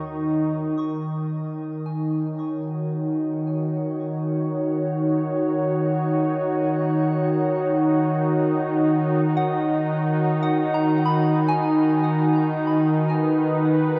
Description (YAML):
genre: ambient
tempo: 56 BPM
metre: 4/4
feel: straight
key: Eb minor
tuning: A4 = 440 Hz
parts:
  - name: warm analog pad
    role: sustained chords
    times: 0.0-14.0 s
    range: Eb3 to Db5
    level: -23 LUFS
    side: equal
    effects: subtle chorus, shimmer reverb
  - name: soft synth bell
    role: arpeggios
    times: 0.0-14.0 s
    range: Gb5 to Eb6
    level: -32 LUFS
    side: equal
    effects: chorus, delay, shimmer reverb
  - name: warm sub bass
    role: bass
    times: 0.0-0.7 s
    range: Eb2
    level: -55 LUFS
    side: equal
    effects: tube saturation
room: wet huge ambient reverb, RT60 9.3 s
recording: none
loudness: -22 LUFS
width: mono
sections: 0.8-14.0 A section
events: fade-in on synth bell 0.8-14.0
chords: 0.0 Ebm7; 9.4 Abm7/Eb